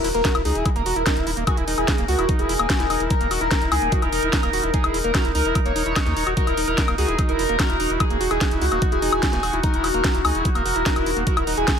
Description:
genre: psychedelic trance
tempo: 147 BPM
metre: 4/4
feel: straight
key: Eb phrygian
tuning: A4 = 440 Hz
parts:
  - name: overdriven synth lead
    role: melody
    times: 0.0-11.8 s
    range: Gb4 to Db5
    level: -25 LUFS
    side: equal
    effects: distortion, phaser, sidechain pumping, tape echo
  - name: evolving wavetable pad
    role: sustained chords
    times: 0.0-11.8 s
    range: Eb4 to Bb4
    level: -27 LUFS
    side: left 1 dB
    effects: chorus, built-in reverb, sidechain pumping
  - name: screaming distorted acid line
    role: riff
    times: 0.0-11.7 s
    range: Bb3 to Gb4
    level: -28 LUFS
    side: moving between left 6 dB and right 6 dB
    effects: distortion, chorus, auto-pan, vintage 12-bit sampler grit, sidechain pumping, dub echo
  - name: round analog bass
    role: bass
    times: 0.0-11.6 s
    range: Eb1 to Eb2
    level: -27 LUFS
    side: equal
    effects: tube saturation
  - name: drum and bass drum kit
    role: drums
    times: 0.0-11.8 s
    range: hi-hat, snare drum, woodblock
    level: -25 LUFS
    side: left 2 dB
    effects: overdrive
  - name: electronic kick drum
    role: drums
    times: 0.2-11.8 s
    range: none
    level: -22 LUFS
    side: equal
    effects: overdrive
room: light reverb, digital ambience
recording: none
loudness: -18 LUFS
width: side -7 dB against mid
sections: 0.0-11.8 A section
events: none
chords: 0.0 Eb5

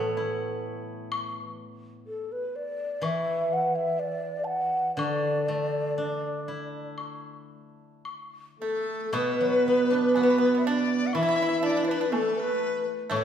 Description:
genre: chinese traditional, Chinese chamber ensemble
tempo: 54-63 BPM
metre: 4/4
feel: rubato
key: D gong mode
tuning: A4 = 440 Hz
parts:
  - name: mellow hollow xiao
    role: melody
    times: 0.0-13.2 s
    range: A4 to A5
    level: -28 LUFS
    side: left 1 dB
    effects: none
  - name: steel-string zither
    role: accompaniment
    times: 0.0-13.2 s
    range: A2 to F#4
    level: -32 LUFS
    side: equal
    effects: none
  - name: woodblock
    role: percussion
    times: 1.1-13.2 s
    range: none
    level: -36 LUFS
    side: left 4 dB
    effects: none
  - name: dark horsehead fiddle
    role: second line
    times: 8.6-13.2 s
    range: A3 to E4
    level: -27 LUFS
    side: right 3 dB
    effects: none
  - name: pipa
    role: second line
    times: 8.6-13.2 s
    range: A3 to E4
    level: -33 LUFS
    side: right 3 dB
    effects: none
  - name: reedy dizi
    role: second line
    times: 8.6-13.2 s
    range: A4 to F#5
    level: -30 LUFS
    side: left 4 dB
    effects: none
room: wet recital hall reverb, RT60 1.5 s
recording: heard from further back in the room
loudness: -24 LUFS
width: side -8 dB against mid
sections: 0.0-9.1 A section; 9.1-13.2 B section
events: none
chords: none

